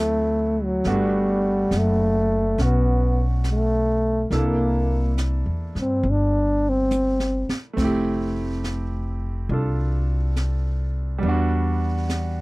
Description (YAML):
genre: jazz ballad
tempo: 70 BPM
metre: 4/4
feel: swing 68% on 8ths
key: unclear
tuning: A4 = 440 Hz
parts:
  - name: breathy trombone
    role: melody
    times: 0.0-7.5 s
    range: F#3 to D4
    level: -22 LUFS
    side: equal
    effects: none
  - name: clear concert grand piano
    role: accompaniment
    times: 0.0-12.4 s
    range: F#3 to A4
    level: -28 LUFS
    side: right 2 dB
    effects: none
  - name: upright bass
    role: bass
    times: 0.0-12.4 s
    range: F1 to G2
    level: -23 LUFS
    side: equal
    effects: none
  - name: jazz brush drum kit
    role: drums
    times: 0.8-12.4 s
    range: brushed snare drum, crash cymbal, hi-hat, kick drum, snare drum, toms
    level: -31 LUFS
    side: right 1 dB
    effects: none
room: little or no reverb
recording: dry, close 1970s-style studio recording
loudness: -20 LUFS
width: side -23 dB against mid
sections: 0.0-12.4 A section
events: drum fill 6.9-7.8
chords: 0.0 D13; 0.9 Gmaj9; 4.3 C13; 7.8 Fmaj9; 11.2 Em7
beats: | 0.85 1.72 2.58 3.44 | 4.30 5.16 6.03 6.90 | 7.77 8.64 9.50 10.37 | 11.23 12.09